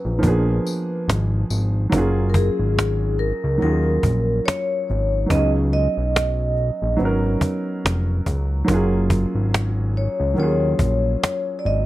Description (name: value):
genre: lo-fi hip hop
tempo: 71 BPM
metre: 4/4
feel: swing 56% on 16ths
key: Eb minor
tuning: A4 = 440 Hz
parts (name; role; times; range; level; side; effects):
- vibraphone with medium mallets; melody; 0.0-11.9 s; Ab4 to Eb5; -24 LUFS; left 1 dB; plate reverb
- dark upright piano; accompaniment; 0.0-11.9 s; F3 to Bb4; -24 LUFS; right 1 dB; cassette tape, plate reverb
- fat analog bass; bass; 0.1-11.9 s; F1 to Eb2; -20 LUFS; equal; none
- cajon; drums; 0.2-11.8 s; none; -21 LUFS; equal; none
- tambourine; percussion; 0.7-1.7 s; none; -35 LUFS; left 5 dB; none
room: light reverb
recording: none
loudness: -18 LUFS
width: side -16 dB against mid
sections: 0.0-1.9 A section; 1.9-11.9 B section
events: none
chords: 0.2 Bb7b9; 1.9 Gbmaj9; 3.6 Ebm11; 5.3 Db9sus4; 7.0 Abm11; 8.7 Gbmaj9; 10.4 Ebm11